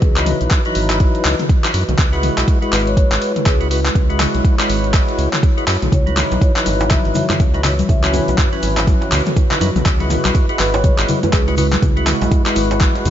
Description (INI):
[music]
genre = afro house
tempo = 122 BPM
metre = 4/4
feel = swing 59% on 16ths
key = unclear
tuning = A4 = 440 Hz
[part]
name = marimba with soft mallets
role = melody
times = 0.0-12.3 s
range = G#4 to E5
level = -26 LUFS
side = left 1 dB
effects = ping-pong delay
[part]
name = dark analog pad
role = sustained chords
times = 0.0-13.1 s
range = E3 to D#5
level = -24 LUFS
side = right 2 dB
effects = chorus, vintage 12-bit sampler grit, sidechain pumping
[part]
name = round analog bass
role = bass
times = 0.0-13.1 s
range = G#1 to F#2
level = -19 LUFS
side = equal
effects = sidechain pumping
[part]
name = deep house drum kit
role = drums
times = 0.0-13.1 s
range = handclaps, hi-hat, toms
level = -20 LUFS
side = left 1 dB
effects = none
[part]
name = electronic kick drum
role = drums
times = 0.0-12.9 s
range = none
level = -15 LUFS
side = equal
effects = none
[part]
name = percussive tonewheel organ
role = stabs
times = 0.2-13.1 s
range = F#3 to B4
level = -22 LUFS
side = left 2 dB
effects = overdrive, slow rotary speaker, vintage 12-bit sampler grit, sidechain pumping, tape echo
[part]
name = congas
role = percussion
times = 5.9-13.1 s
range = none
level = -24 LUFS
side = left 4 dB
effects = none
[part]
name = djembe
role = percussion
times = 5.9-13.1 s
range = none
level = -27 LUFS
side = right 4 dB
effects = none
[part]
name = tube shaker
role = percussion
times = 5.9-13.1 s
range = none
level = -35 LUFS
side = left 1 dB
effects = none
[sound]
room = light reverb, small room ambience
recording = nothing above 7.6 kHz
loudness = -13 LUFS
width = side -10 dB against mid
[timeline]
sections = 0.0-13.1 A section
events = none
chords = 0.0 C#m11; 2.0 Eadd9; 5.9 C#m11; 9.9 Eadd9